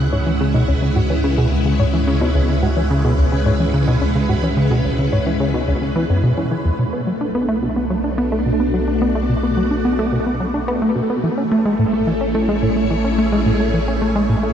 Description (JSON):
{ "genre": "ambient", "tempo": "108 BPM", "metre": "4/4", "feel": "straight", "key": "C# minor", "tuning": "A4 = 445 Hz", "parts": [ { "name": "phased string machine", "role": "sustained chords", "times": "0.0-14.5 s", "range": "G#3 to F#5", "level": "-21 LUFS", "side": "equal", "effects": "ensemble chorus, phaser" }, { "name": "plucky analog bass", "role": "riff", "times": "0.0-14.5 s", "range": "C#2 to D4", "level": "-18 LUFS", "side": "equal", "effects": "tape echo" }, { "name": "round analog bass", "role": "bass", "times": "0.0-14.5 s", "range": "A1 to C#2", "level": "-23 LUFS", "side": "equal", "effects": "none" }, { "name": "soft round pluck", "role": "arpeggios", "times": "0.1-6.6 s", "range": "C#3 to C#5", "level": "-27 LUFS", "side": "left 2 dB", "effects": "chorus, auto-pan, tape echo" }, { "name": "pulsing gated texture", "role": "texture", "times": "6.8-14.5 s", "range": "G#4 to G#5", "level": "-38 LUFS", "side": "left 2 dB", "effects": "none" } ], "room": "moderate huge ambient reverb, RT60 7.2 s", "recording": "dark, warm production", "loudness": "-15 LUFS", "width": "side -9 dB against mid", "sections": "0.0-6.8 A section; 6.8-14.5 B section", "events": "none", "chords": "0.0 C#m7; 6.8 Bm7; 11.2 Amaj7", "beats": "| 0.13 0.68 1.24 1.79 | 2.35 2.90 3.46 4.02 | 4.57 5.13 5.68 6.24 | 6.79 7.35 7.91 8.46 | 9.02 9.57 10.13 10.68 | 11.24 11.79 12.35 12.90 | 13.46 14.02" }